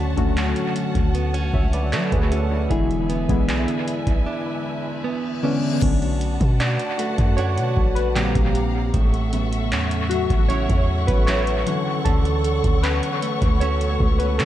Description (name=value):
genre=contemporary R&B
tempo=77 BPM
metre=4/4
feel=straight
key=unclear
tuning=A4 = 440 Hz
part: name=warm analog keys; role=accompaniment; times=0.0-14.4 s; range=C#3 to E5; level=-24 LUFS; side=left 2 dB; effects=chorus, analog delay
part: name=warm studio string section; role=sustained chords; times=0.0-14.4 s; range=E4 to C#6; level=-30 LUFS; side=left 1 dB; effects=none
part: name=direct-recorded clean electric guitar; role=arpeggios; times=0.0-14.4 s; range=A2 to G#4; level=-28 LUFS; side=right 4 dB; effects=analog delay
part: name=warm 808-style bass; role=bass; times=0.0-14.4 s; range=E1 to F#3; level=-23 LUFS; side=equal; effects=none
part: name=booming analog drum machine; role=drums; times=0.2-14.4 s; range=crash cymbal, handclaps, hi-hat, kick drum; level=-23 LUFS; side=equal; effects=vintage 12-bit sampler grit, analog delay
part: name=reverse cymbal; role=sound effects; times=4.7-5.8 s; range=none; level=-37 LUFS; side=left 7 dB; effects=none
room=light reverb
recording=echo-heavy mix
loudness=-18 LUFS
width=side -12 dB against mid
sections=0.0-5.8 A section; 5.8-14.4 B section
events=break 4.3-5.8; reverse cymbal 4.7-5.8; synth keys solo 5.8-14.4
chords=0.0 Dmaj7; 2.7 E7; 5.8 Bm7; 8.2 Bb6; 8.9 A6; 11.7 Dmaj7